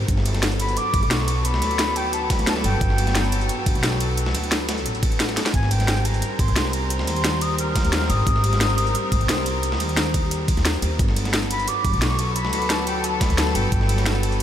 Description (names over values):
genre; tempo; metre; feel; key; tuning
liquid drum and bass; 176 BPM; 4/4; straight; unclear; A4 = 440 Hz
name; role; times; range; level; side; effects
warm chamber string section; sustained chords; 0.0-14.4 s; F#3 to Bb4; -28 LUFS; left 1 dB; sidechain pumping
upright bass; bass; 0.0-14.4 s; G1 to Eb2; -23 LUFS; equal; none
drum and bass drum kit; drums; 0.1-14.4 s; hi-hat, ride cymbal, snare drum; -26 LUFS; equal; overdrive
dusty soul sampler-style drum kit; drums; 0.1-14.4 s; hi-hat, snare drum; -31 LUFS; equal; overdrive, high-pass filter on hats, high-pass filter on snare
electronic kick drum; drums; 0.1-13.8 s; none; -22 LUFS; equal; overdrive
mellow jazz flute; melody; 0.6-9.5, 11.5-14.4 s; G5 to F6; -27 LUFS; equal; analog delay
room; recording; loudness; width
moderate huge ambient reverb, RT60 7.9 s; dreamy mix soaked in reverb; -19 LUFS; side -10 dB against mid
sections
0.0-14.4 A section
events
drum fill 5.4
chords
0.1 Gmaj9; 5.5 Abmaj9; 11.0 Gmaj9